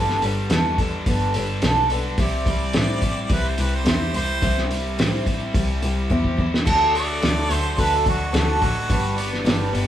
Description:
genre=folk rock and heartland rock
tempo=107 BPM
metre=4/4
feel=straight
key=D mixolydian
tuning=A4 = 440 Hz
part: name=picked twelve-string acoustic guitar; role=accompaniment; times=0.0-9.9 s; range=G2 to A4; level=-25 LUFS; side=right 1 dB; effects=none
part: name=overdriven electric guitar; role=riff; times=0.0-9.9 s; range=G2 to A4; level=-29 LUFS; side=equal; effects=none
part: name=clear double bass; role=bass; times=0.0-9.9 s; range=G1 to A2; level=-24 LUFS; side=equal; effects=none
part: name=cloth-damped thuddy drum kit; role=drums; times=0.1-9.9 s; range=crash cymbal, hi-hat, kick drum, snare drum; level=-23 LUFS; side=equal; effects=none
part: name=warm harmonica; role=second line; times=2.2-9.4 s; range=F#4 to D5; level=-27 LUFS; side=equal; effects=none
part: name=pedal harmonium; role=sustained chords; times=6.7-9.9 s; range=G3 to B5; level=-33 LUFS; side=equal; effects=none
room=moderate small room reverb, RT60 0.6 s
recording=band playing live in one room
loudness=-18 LUFS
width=side -11 dB against mid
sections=0.0-6.7 A section; 6.7-9.9 B section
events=drum fill 6.1-6.7; harmonica solo 6.7-9.9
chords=0.0 Gadd9; 2.2 C; 6.7 D; 8.9 G

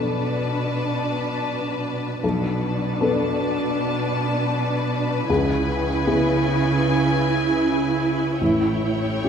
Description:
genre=cinematic, emotional film score for orchestra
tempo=78 BPM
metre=4/4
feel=rubato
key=B dorian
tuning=A4 = 439 Hz
part: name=rich studio violin section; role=melody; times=0.0-9.3 s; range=G5 to A5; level=-30 LUFS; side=left 3 dB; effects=none
part: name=rich studio violin section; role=second line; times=0.0-9.3 s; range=B4 to C#5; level=-30 LUFS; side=left 5 dB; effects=none
part: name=warm baby grand piano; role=accompaniment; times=0.0-9.3 s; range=A1 to A4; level=-26 LUFS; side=left 3 dB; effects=none
part: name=warm studio viola section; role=accompaniment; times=0.0-9.3 s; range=D4 to E4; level=-25 LUFS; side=right 2 dB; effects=none
part: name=warm studio cello section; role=bass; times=0.0-9.3 s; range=A2 to C#3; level=-25 LUFS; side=right 2 dB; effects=none
room=wet concert hall reverb, RT60 2.4 s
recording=minimal, uncompressed stereo recording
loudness=-20 LUFS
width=side -7 dB against mid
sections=0.0-9.3 A section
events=none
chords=0.0 Bm7; 5.3 C#m7; 8.4 A7

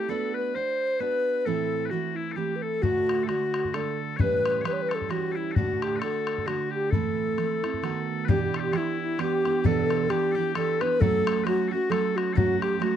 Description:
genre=celtic folk, Celtic waltz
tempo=132 BPM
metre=3/4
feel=swing 56% on 8ths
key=A dorian, E dorian from 8.3 s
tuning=A4 = 440 Hz
part: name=mellow wooden-headed alto flute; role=melody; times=0.0-13.0 s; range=E4 to C#5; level=-27 LUFS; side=left 1 dB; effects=none
part: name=loud bright bagpipes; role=second line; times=0.0-13.0 s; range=E4 to C#5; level=-34 LUFS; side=left 8 dB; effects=none
part: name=picked steel-string acoustic guitar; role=accompaniment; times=0.0-13.0 s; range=D2 to B4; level=-30 LUFS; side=right 10 dB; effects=none
part: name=bodhran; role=percussion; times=2.8-12.9 s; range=none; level=-29 LUFS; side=left 4 dB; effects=none
room=light reverb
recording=dry, close 1970s-style studio recording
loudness=-24 LUFS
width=side -10 dB against mid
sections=0.0-8.3 A section; 8.3-13.0 B section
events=none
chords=0.1 Bm; 1.5 Am; 2.8 D; 4.2 A7; 5.6 D; 6.9 Am; 7.8 B7; 8.3 Em7; 11.0 F#m

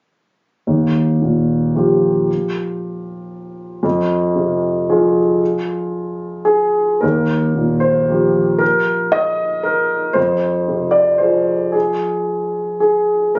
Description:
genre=neoclassical minimalist piano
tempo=114 BPM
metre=3/4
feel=rubato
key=Eb major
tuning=A4 = 444 Hz
part: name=dark concert grand piano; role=solo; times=0.7-13.4 s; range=Eb2 to Eb5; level=-17 LUFS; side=equal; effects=none
room=moderate booth ambience, RT60 0.2 s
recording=recorded on a phone in the room, club ambience, nothing above 7.5 kHz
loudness=-17 LUFS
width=mono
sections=0.7-7.0 A section; 7.0-13.4 B section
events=none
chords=0.7 Ebadd9; 3.8 Fm; 7.0 Ebadd9; 10.2 Fm

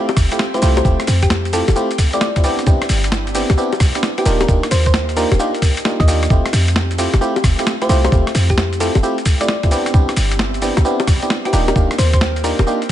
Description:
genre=UK garage, two-step garage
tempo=132 BPM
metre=4/4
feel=swing 66% on 16ths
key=unclear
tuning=A4 = 440 Hz
part: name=airy breathy pad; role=sustained chords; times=0.0-12.9 s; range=A3 to G4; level=-28 LUFS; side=right 1 dB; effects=chorus, sidechain pumping
part: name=FM electric piano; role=stabs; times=0.0-12.8 s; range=A3 to G4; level=-20 LUFS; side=equal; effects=chorus, ping-pong delay
part: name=boom bap sampler-style drum kit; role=drums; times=0.1-12.9 s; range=bongos, hi-hat, rim click, shaker, snare drum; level=-21 LUFS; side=left 2 dB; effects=studio reverb
part: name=short 808-style bass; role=bass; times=0.2-12.6 s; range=Eb1 to F2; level=-16 LUFS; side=equal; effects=none
part: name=electronic kick drum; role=drums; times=0.2-12.9 s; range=none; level=-15 LUFS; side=equal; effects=studio reverb
part: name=thumb-piano-like synth pluck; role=melody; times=0.5-12.6 s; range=G4 to Eb5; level=-23 LUFS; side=equal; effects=chorus, ping-pong delay
room=little or no reverb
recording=nothing above 10.7 kHz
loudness=-13 LUFS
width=side -12 dB against mid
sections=0.0-12.9 A section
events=none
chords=0.0 Fmaj9; 2.4 Cmaj9; 4.3 Ebmaj9; 6.3 Fmaj9; 9.7 Cmaj9; 11.5 Ebmaj9

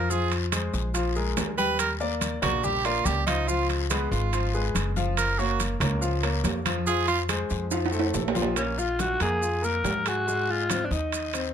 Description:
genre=Afro-Cuban jazz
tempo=142 BPM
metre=4/4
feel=straight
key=unclear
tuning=A4 = 441 Hz
part: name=bright tenor saxophone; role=second line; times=0.0-7.2 s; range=Ab3 to Cb5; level=-27 LUFS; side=right 6 dB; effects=none
part: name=clear concert grand piano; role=accompaniment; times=0.0-11.5 s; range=F3 to Ab5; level=-30 LUFS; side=left 3 dB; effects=none
part: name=upright bass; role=bass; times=0.0-11.5 s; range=Gb1 to Ab2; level=-29 LUFS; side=equal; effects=none
part: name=congas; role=percussion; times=0.1-11.5 s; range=none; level=-35 LUFS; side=left 2 dB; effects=none
part: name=guiro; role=percussion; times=0.1-11.5 s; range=none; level=-38 LUFS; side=left 9 dB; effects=none
part: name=maracas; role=percussion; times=0.1-11.5 s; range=none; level=-36 LUFS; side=right 4 dB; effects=none
part: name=timbales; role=percussion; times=0.3-11.5 s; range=none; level=-31 LUFS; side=right 6 dB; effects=none
part: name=growling alto saxophone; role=melody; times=8.6-11.5 s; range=Db4 to Bb4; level=-27 LUFS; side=left 1 dB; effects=none
room=light reverb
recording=close, detailed microphones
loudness=-23 LUFS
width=side -8 dB against mid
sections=0.0-8.6 A section; 8.6-11.5 B section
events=tenor saxophone solo 0.0-8.6; drum fill 7.7-8.6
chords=0.1 Fmadd11; 1.0 Bb5; 1.8 Ebmaj9; 3.5 Db7; 5.2 Gbmaj7; 6.9 Fm; 7.7 F; 8.6 Bb5; 10.3 Ab

